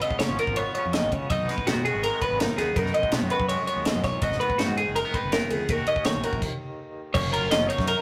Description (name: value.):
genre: math rock and midwest emo.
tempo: 164 BPM.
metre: 4/4.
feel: straight.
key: unclear.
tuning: A4 = 440 Hz.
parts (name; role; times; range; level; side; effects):
twangy electric guitar; accompaniment; 0.0-8.0 s; Eb2 to Ab4; -35 LUFS; equal; tremolo.
twelve-string electric guitar; arpeggios; 0.0-8.0 s; F#4 to Eb5; -28 LUFS; equal; none.
crisp fusion drum kit; drums; 0.0-8.0 s; crash cymbal, kick drum, ride cymbal, snare drum; -31 LUFS; equal; none.
fuzz fingered electric bass; bass; 0.2-7.9 s; F1 to Eb3; -34 LUFS; equal; overdrive.
room: moderate studio reverb, RT60 0.5 s.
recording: rough rehearsal-room recording, tube saturation.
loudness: -25 LUFS.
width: mono.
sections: 0.0-7.1 A section.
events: stop 6.4-7.1.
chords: 0.0 Db7; 1.3 B6; 4.2 Abm7; 5.7 Ebm7; 7.1 Gbmaj7.